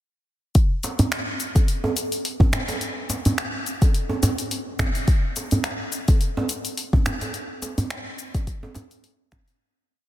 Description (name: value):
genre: downtempo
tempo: 106 BPM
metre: 4/4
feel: swing 55% on 16ths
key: none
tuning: none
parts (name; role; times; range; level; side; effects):
- deep house drum kit; drums; 0.6-9.6 s; cabasa, finger snaps, hi-hat; -29 LUFS; left 2 dB; soft clipping on snare
- electronic kick drum; drums; 0.6-9.4 s; none; -19 LUFS; equal; none
- djembe; percussion; 0.8-9.4 s; none; -26 LUFS; right 1 dB; none
room: light reverb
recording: dense, heavily limited modern master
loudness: -21 LUFS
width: side -13 dB against mid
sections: 0.6-9.6 groove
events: fade-out 6.6-9.6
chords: none